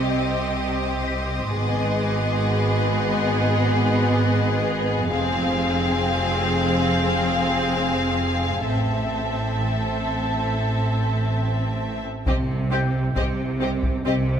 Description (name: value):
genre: cinematic, suspense film score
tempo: 67 BPM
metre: 4/4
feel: straight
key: C harmonic minor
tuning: A4 = 440 Hz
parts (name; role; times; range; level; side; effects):
- warm studio violin section; melody; 0.0-14.1 s; Eb5 to F5; -29 LUFS; left 3 dB; none
- rich studio violin section; second line; 0.0-14.1 s; G4 to A4; -28 LUFS; left 2 dB; none
- rich studio viola section; accompaniment; 0.0-14.1 s; Cb4 to C4; -27 LUFS; equal; none
- rich studio cello section; bass; 0.0-14.4 s; F2 to C3; -26 LUFS; right 2 dB; none
- rich studio double bass section; bass; 0.0-14.4 s; F1 to C2; -26 LUFS; right 1 dB; none
- rich studio violin section; texture; 0.0-4.6 s; C6 to Eb6; -35 LUFS; equal; none
- worn celesta; texture; 0.0-14.4 s; G5 to B6; -34 LUFS; left 6 dB; none
- solo taiko drums; drums; 12.3-14.4 s; none; -28 LUFS; equal; none
room: wet concert hall reverb, RT60 2.4 s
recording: none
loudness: -20 LUFS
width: side -8 dB against mid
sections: 0.0-12.3 A section; 12.3-14.4 A section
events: none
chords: 0.0 Cm; 1.5 Abm; 5.1 Fm; 8.7 Am; 12.3 C5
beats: 0.62 | 1.52 2.42 3.31 4.21 | 5.10 6.00 6.89 7.79 | 8.69 9.58 10.48 11.37 | 12.27 13.16 14.06